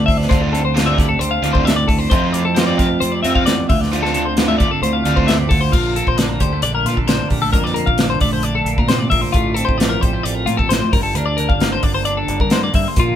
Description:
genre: math rock and midwest emo.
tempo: 133 BPM.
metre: 4/4.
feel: straight.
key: unclear.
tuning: A4 = 441 Hz.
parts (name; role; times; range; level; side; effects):
twelve-string electric guitar; accompaniment; 0.0-13.2 s; D2 to G4; -21 LUFS; right 4 dB; spring reverb.
twelve-string electric guitar; arpeggios; 0.0-13.2 s; F4 to F5; -20 LUFS; left 5 dB; none.
growling fingered electric bass; bass; 0.0-13.2 s; G1 to Bb2; -22 LUFS; equal; overdrive.
modern studio drum kit; drums; 0.1-13.1 s; crash cymbal, hi-hat, kick drum, snare drum; -18 LUFS; equal; none.
overdriven electric guitar; riff; 0.3-5.4 s; D3 to F4; -23 LUFS; right 1 dB; none.
room: moderate studio reverb, RT60 0.8 s.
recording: band playing live in one room.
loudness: -14 LUFS.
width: side -10 dB against mid.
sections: 0.0-5.7 A section; 5.7-13.2 B section.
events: none.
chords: 0.0 Dm7; 2.1 Fmaj7; 3.7 Dm9; 5.7 Bbmaj7; 9.4 F6/A; 10.9 Gmadd9.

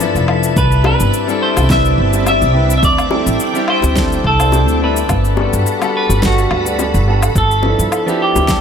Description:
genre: sunset chillout.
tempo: 106 BPM.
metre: 4/4.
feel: swing 54% on 16ths.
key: G major.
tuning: A4 = 437 Hz.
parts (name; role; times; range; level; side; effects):
warm concert grand piano; accompaniment; 0.0-8.6 s; F3 to D5; -19 LUFS; moving between left 9 dB and right 7 dB; auto-pan, dub echo.
soft string machine; sustained chords; 0.0-8.6 s; C4 to D6; -22 LUFS; right 1 dB; ensemble chorus.
upright bass; bass; 0.0-8.6 s; F1 to G2; -15 LUFS; equal; none.
electronic cabasa, woodblock and snare drum; drums; 0.0-8.6 s; none; -22 LUFS; left 2 dB; overdrive, small room ambience, dub echo.
drifting glass-harmonics texture; texture; 0.0-8.6 s; A5; -29 LUFS; left 3 dB; chorus, built-in reverb.
clean electric guitar; melody; 0.6-8.6 s; F#4 to E5; -18 LUFS; equal; dub echo.
electronic kick drum; drums; 0.6-8.6 s; none; -19 LUFS; equal; overdrive, small room ambience.
bongos; percussion; 0.8-8.5 s; none; -23 LUFS; left 6 dB; none.
room: light reverb.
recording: echo-heavy mix.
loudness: -11 LUFS.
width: side -7 dB against mid.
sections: 0.0-8.6 A section.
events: none.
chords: 0.0 G13; 0.6 Cmaj9; 2.8 D9sus4; 5.1 Gmaj9; 7.4 G13.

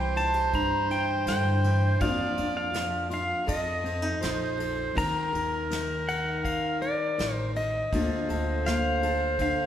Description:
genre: acoustic folk-pop ballad.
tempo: 81 BPM.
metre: 4/4.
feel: straight.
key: Bb major.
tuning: A4 = 443 Hz.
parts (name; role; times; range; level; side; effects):
pedal steel guitar; melody; 0.0-9.7 s; D5 to Bb5; -30 LUFS; left 1 dB; none.
warm clarinet; second line; 0.0-9.7 s; Bb4 to Eb5; -31 LUFS; right 3 dB; none.
fingerpicked steel-string acoustic guitar; accompaniment; 0.0-9.7 s; F2 to Bb4; -32 LUFS; left 2 dB; none.
upright bass; bass; 0.0-9.5 s; A1 to G2; -31 LUFS; equal; none.
soft brush drum kit; drums; 0.2-9.6 s; kick drum, ride cymbal, snare drum; -37 LUFS; equal; none.
room: wet recital hall reverb, RT60 1.7 s.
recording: recorded in a church or concert hall.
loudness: -25 LUFS.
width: side -10 dB against mid.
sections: 0.0-9.7 A section.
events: none.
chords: 0.0 C; 2.0 Bb/F; 3.5 F7; 5.0 Eb5; 7.9 Bbmaj7/D.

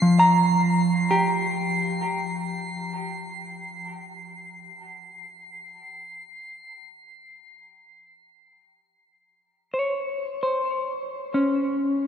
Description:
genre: ambient.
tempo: 65 BPM.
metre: 4/4.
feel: straight.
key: Db lydian.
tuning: A4 = 440 Hz.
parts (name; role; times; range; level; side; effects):
semi-hollow electric guitar; arpeggios; 0.0-12.1 s; F3 to Bb5; -22 LUFS; equal; spring reverb, diffuse ambient delay, shimmer reverb.
drifting glass-harmonics texture; texture; 0.0-6.8 s; C7; -33 LUFS; equal; chorus, built-in reverb, shimmer reverb.
room: wet cathedral reverb, RT60 6.1 s.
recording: in a vast, echoing space, cassette tape.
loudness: -22 LUFS.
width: side -8 dB against mid.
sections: 0.0-6.7 A section; 6.7-12.1 B section.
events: none.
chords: 0.0 N.C.; 6.7 Dbmaj7(no3).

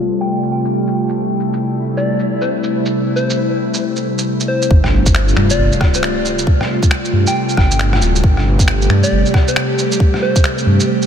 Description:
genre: future garage.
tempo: 136 BPM.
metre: 4/4.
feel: swing 62% on 16ths.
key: unclear.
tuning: A4 = 440 Hz.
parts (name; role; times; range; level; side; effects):
airy breathy pad; sustained chords; 0.0-11.1 s; C3 to G4; -17 LUFS; equal; chorus, sidechain pumping.
soft struck synth lead; melody; 0.2-10.5 s; C5 to G5; -22 LUFS; left 1 dB; chorus, vintage 12-bit sampler grit, analog delay.
electronic shaker, rim click and finger snaps; drums; 0.2-11.1 s; none; -20 LUFS; right 1 dB; none.
swelling detuned saw bass; bass; 4.7-10.8 s; D1 to G2; -14 LUFS; equal; sidechain pumping.
electronic kick drum; drums; 4.7-10.4 s; none; -12 LUFS; equal; none.
sub drop; sound effects; 4.7-6.5 s; none; -21 LUFS; equal; none.
room: moderate cathedral reverb, RT60 5.4 s.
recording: dreamy mix soaked in reverb, low-pass filter.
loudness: -13 LUFS.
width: side -8 dB against mid.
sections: 0.0-4.7 A section; 4.7-11.1 B section.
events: filter sweep 0.0-4.7; impact 4.7-6.5.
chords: 0.0 G9sus4.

